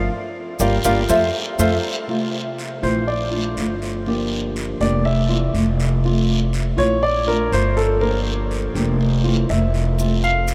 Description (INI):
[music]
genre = latin, Cuban son and guajira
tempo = 122 BPM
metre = 4/4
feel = straight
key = F major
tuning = A4 = 440 Hz
[part]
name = Cuban tres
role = melody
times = 0.0-1.8 s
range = C5 to G5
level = -26 LUFS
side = equal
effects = none
[part]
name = nylon-string guitar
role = accompaniment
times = 0.0-10.5 s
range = C3 to G4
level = -27 LUFS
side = equal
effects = none
[part]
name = warm baby grand piano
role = arpeggios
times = 0.0-10.5 s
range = F4 to F5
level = -26 LUFS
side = equal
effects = none
[part]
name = upright bass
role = bass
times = 0.0-10.5 s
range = F1 to F2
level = -23 LUFS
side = equal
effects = none
[part]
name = guiro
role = percussion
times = 0.6-10.5 s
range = none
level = -35 LUFS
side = equal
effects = none
[part]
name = maracas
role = percussion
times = 0.6-1.7, 10.0-10.5 s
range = none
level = -31 LUFS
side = equal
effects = none
[sound]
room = wet huge ambient reverb, RT60 8.2 s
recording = in a vast, echoing space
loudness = -20 LUFS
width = mono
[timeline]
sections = 0.0-2.1 A section; 2.1-10.5 B section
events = band accent 0.1-2.1; grand piano solo 2.1-10.5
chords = 0.1 Gm7; 1.1 Fmaj7; 3.1 Bbmaj7; 4.1 Gm7; 5.1 Fmaj7; 7.0 Bbmaj7; 8.0 Gm7; 9.0 Fmaj7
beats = | 0.11 0.60 1.10 1.59 | 2.08 2.58 3.07 3.57 | 4.06 4.56 5.05 5.54 | 6.04 6.53 7.03 7.52 | 8.02 8.51 9.00 9.50 | 9.99 10.48